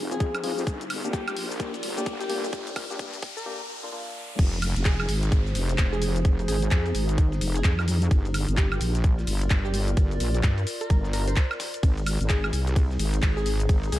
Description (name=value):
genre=bass house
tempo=129 BPM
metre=4/4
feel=swing 61% on 16ths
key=F dorian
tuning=A4 = 438 Hz
part: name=wobble bass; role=bass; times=0.0-14.0 s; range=F1 to G2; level=-26 LUFS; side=equal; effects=chorus, tube saturation, sidechain pumping, high-pass filter
part: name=riser and downlifter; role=sound effects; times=0.0-8.1 s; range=none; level=-39 LUFS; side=equal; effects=none
part: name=warbly tape-like pad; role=texture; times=0.0-14.0 s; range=Eb4 to D5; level=-36 LUFS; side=left 1 dB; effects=chorus, built-in reverb, sidechain pumping
part: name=glassy wavetable pluck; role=melody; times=0.1-14.0 s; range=G4 to C5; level=-36 LUFS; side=equal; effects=chorus, digital delay
part: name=percussive organ stab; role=stabs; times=0.1-4.4 s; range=Bb3 to Ab4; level=-35 LUFS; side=left 3 dB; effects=chorus, sidechain pumping, digital delay
part: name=garage drum kit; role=drums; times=0.1-14.0 s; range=crash cymbal, handclaps, hi-hat, ride cymbal, shaker, woodblock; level=-32 LUFS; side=equal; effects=none
part: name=electronic kick drum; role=drums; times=0.2-13.8 s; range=none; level=-22 LUFS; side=equal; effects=none
part: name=dusty soul sampler-style drum kit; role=drums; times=4.4-14.0 s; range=ride cymbal, snare drum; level=-43 LUFS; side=right 2 dB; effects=none
room=little or no reverb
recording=dark, warm production, high-pass filter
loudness=-23 LUFS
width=side -15 dB against mid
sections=0.0-4.4 A section; 4.4-14.0 B section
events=build-up 0.0-4.4; riser 0.0-4.4; filter sweep on synth stab 0.0-4.4; filter sweep 0.0-4.4; drum fill 0.7-3.5; drop 4.4-14.0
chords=0.0 Fm; 0.7 Gm; 4.4 Fm; 8.1 Gm; 11.8 Abadd9